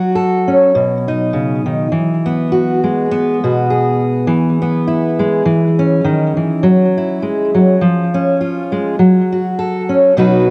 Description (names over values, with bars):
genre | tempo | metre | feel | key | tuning
folk, solo fingerstyle acoustic guitar | 102 BPM | 4/4 | swing 55% on 8ths | E major | A4 = 439 Hz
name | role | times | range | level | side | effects
fingerpicked steel-string acoustic guitar | solo | 0.0-10.5 s | B2 to B4 | -14 LUFS | equal | cassette tape, tape echo
room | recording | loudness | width
moderate lush hall reverb, RT60 2.4 s | home recording on cassette | -14 LUFS | mono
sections
0.0-4.3 A section; 4.3-10.5 A section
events
none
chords
0.0 F#m; 0.7 Badd9; 1.9 Eadd9; 4.3 E; 5.5 C#madd9; 6.6 Eadd9/F#; 7.8 C#/E#; 9.0 F#m